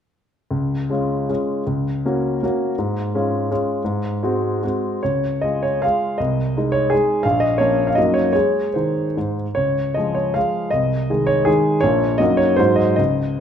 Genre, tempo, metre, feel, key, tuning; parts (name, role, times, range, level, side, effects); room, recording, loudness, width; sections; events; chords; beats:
classical, romantic triple-time dance for piano with dotted rhythms; 133-183 BPM; 3/4; rubato; Db major; A4 = 439 Hz
clear grand piano; solo; 0.5-13.4 s; Bb1 to F5; -17 LUFS; equal
moderate recital hall reverb, RT60 1.4 s; minimal, uncompressed stereo recording; -17 LUFS; side -8 dB against mid
0.5-5.0 A section; 5.0-13.4 B section
0.5 Db; 1.7 Gb/Db; 2.8 Db/Ab; 3.8 Ab7; 5.0 Db; 6.2 Ab/C; 7.3 Bbm; 8.0 Ebm/Gb; 8.3 Ab; 9.6 Db; 10.7 Ab/C; 11.8 Bbm; 12.2 Ebm/Gb; 12.6 Ab7
| 0.51 0.91 1.29 | 1.67 2.05 2.43 | 2.78 3.14 3.50 | 3.85 4.22 4.63 | 5.04 5.44 5.84 | 6.20 6.57 6.93 | 7.26 7.61 7.98 | 8.35 8.75 9.16 | 9.56 9.96 10.36 | 10.73 11.11 11.47 | 11.83 12.20 12.59 | 12.98